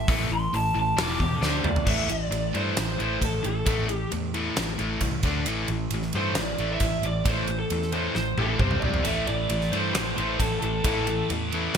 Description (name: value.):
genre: hard rock.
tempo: 134 BPM.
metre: 4/4.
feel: straight.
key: A minor.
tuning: A4 = 440 Hz.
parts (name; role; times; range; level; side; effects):
lead guitar through a small cranked amp; melody; 0.0-11.2 s; G4 to D6; -29 LUFS; right 1 dB; overdrive.
biting overdriven guitar; riff; 0.0-11.8 s; E2 to D4; -30 LUFS; left 10 dB; none.
sludgy distorted guitar; riff; 0.0-11.8 s; E2 to D4; -32 LUFS; right 11 dB; overdrive.
vintage muted fingered electric bass; bass; 0.0-11.8 s; E1 to G2; -30 LUFS; equal; none.
gated 80s drum kit; drums; 0.1-11.8 s; crash cymbal, hi-hat, kick drum, ride cymbal, snare drum, toms; -28 LUFS; equal; none.
high-gain distorted guitar; riff; 9.0-11.8 s; A2 to A3; -32 LUFS; equal; distortion.
room: light reverb.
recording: bright 1980s-style digital production.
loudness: -23 LUFS.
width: side -7 dB against mid.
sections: 0.0-1.9 A section; 1.9-11.8 B section.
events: lead electric guitar solo 0.0-1.9; drum fill 1.4-1.9, 8.2-9.1.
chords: 0.0 A5; 1.0 E5; 1.4 D5; 1.9 A5; 5.2 D5; 5.5 A5; 8.6 C5; 9.1 A5.